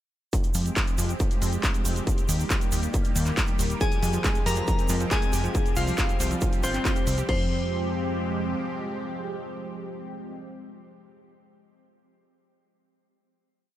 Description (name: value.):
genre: uplifting trance.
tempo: 138 BPM.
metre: 4/4.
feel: straight.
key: F minor.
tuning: A4 = 441 Hz.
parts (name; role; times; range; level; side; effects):
lush unison pad; sustained chords; 0.4-10.4 s; F3 to G4; -32 LUFS; equal; chorus, phaser, sidechain pumping.
electronic kick drum; drums; 0.3-7.4 s; none; -26 LUFS; equal; distortion.
techno drum kit; drums; 0.3-7.4 s; crash cymbal, handclaps, hi-hat; -32 LUFS; equal; none.
egg shaker; percussion; 0.3-7.3 s; none; -36 LUFS; right 5 dB; none.
plucky analog bass; bass; 0.5-8.6 s; Eb1 to F2; -28 LUFS; equal; sidechain pumping.
glassy synth bell; second line; 3.8-10.4 s; C4 to Bb5; -31 LUFS; left 2 dB; chorus, dub echo.
analog pluck; arpeggios; 3.8-7.5 s; F3 to C5; -35 LUFS; right 3 dB; chorus, cassette tape, sidechain pumping, dub echo.
room: digital ambience.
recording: none.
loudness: -23 LUFS.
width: side -13 dB against mid.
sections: 0.3-7.3 drop; 7.3-10.8 final chord.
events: drop 0.3-7.3.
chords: 0.3 Fmadd9; 2.1 Eb; 3.8 Fmadd9; 5.5 Csus4; 7.3 Fmadd9.